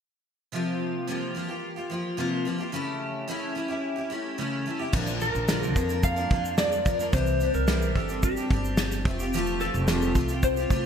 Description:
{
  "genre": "acoustic pop",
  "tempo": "109 BPM",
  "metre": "4/4",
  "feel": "straight",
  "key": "unclear",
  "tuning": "A4 = 440 Hz",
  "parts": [
    { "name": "picked steel-string acoustic guitar", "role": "accompaniment", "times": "0.5-10.9 s", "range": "Bb2 to Bb4", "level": "-28 LUFS", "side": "equal", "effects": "double-tracked left and right" },
    { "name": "upright bass", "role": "bass", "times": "4.9-10.9 s", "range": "F1 to F2", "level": "-30 LUFS", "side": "equal", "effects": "none" },
    { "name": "natural country drum kit", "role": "drums", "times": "4.9-10.8 s", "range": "crash cymbal, kick drum, shaker, snare drum", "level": "-27 LUFS", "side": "equal", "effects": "gated reverb" },
    { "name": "electric slide guitar", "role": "melody", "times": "5.2-10.9 s", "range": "G4 to F5", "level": "-29 LUFS", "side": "left 1 dB", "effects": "wide subtle chorus, digital delay" }
  ],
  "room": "moderate lush hall reverb, RT60 2.1 s",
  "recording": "bright 1980s-style digital production",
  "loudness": "-24 LUFS",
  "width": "side -8 dB against mid",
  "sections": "0.5-4.9 A section; 4.9-10.9 B section",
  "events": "none",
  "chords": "0.5 C7sus4; 2.7 A7/C#; 4.9 Bb; 7.1 Cadd9; 9.1 Fadd9",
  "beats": "| 0.53 1.08 1.63 2.18 | 2.73 3.28 3.83 4.38 | 4.93 5.48 6.03 6.58 | 7.13 7.68 8.23 8.78 | 9.33 9.88 10.43"
}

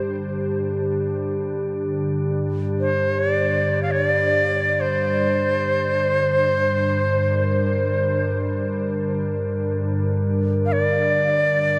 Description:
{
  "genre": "world meditative, free-time meditation music",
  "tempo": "free time",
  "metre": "none",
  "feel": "none",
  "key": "G minor pentatonic",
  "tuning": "A4 = 442 Hz",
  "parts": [
    { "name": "organ-like drone", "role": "drone", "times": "0.0-11.8 s", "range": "G2 to D3", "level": "-26 LUFS", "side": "equal", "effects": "ensemble chorus, built-in reverb" },
    { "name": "glass harmonica", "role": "texture", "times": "0.0-11.8 s", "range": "G4 to Bb4", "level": "-30 LUFS", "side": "equal", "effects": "none" },
    { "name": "breathy bright Native American-style cedar flute", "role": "melody", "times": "2.8-11.8 s", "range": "C5 to F5", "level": "-24 LUFS", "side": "equal", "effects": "tape echo" }
  ],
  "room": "wet huge ambient reverb, RT60 6.8 s",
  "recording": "dark, warm production",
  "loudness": "-21 LUFS",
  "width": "mono",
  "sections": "0.0-11.8 A section",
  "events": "none",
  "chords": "none",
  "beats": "free time"
}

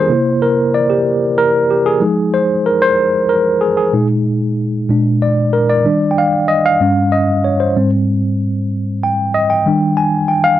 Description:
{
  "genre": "gospel",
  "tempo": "63 BPM (dotted quarters)",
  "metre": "6/8",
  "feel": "straight",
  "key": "Eb major",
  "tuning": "A4 = 445 Hz",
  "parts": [
    { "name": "mellow tine electric piano", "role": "solo", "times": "0.0-10.6 s", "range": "G2 to Ab5", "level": "-12 LUFS", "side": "equal", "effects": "medium stereo tremolo" }
  ],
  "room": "light reverb",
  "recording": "dry, close 1970s-style studio recording",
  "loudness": "-12 LUFS",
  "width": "side -12 dB against mid",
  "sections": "0.0-10.6 A section",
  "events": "tine electric piano solo 0.0-10.6",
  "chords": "0.1 C7; 2.0 Fm7; 3.9 Bb7sus4; 4.9 Bb7; 5.8 Ebmaj7; 6.8 Eb13/G; 7.8 Abmaj7; 9.7 Ebmaj7",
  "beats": "| 0.10 1.06 | 2.02 2.97 | 3.93 4.89 | 5.84 6.80 | 7.75 8.71 | 9.67"
}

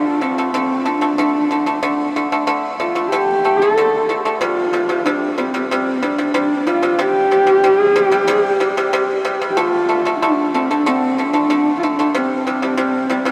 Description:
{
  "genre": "mongolian traditional, Mongolian folk",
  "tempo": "93 BPM",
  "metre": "4/4",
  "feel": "straight",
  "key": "C zhi mode",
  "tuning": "A4 = 440 Hz",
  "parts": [
    { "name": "dark horsehead fiddle", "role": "melody", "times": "0.0-13.3 s", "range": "C4 to A4", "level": "-19 LUFS", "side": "equal", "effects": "none" },
    { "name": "pipa", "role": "arpeggios", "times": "0.0-13.3 s", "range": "C3 to A3", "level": "-21 LUFS", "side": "equal", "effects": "none" }
  ],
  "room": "wet huge ambient reverb, RT60 7.3 s",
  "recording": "heard from further back in the room",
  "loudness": "-17 LUFS",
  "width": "mono",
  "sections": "0.0-13.3 A section",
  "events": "none",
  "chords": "0.0 D5; 4.4 C5; 9.6 D5; 12.2 C5",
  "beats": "0.53 1.18 | 1.82 2.47 3.11 3.76 | 4.40 5.05 5.70 6.34 | 6.99 7.63 8.28 8.93 | 9.57 10.22 10.86 11.51 | 12.15 12.80"
}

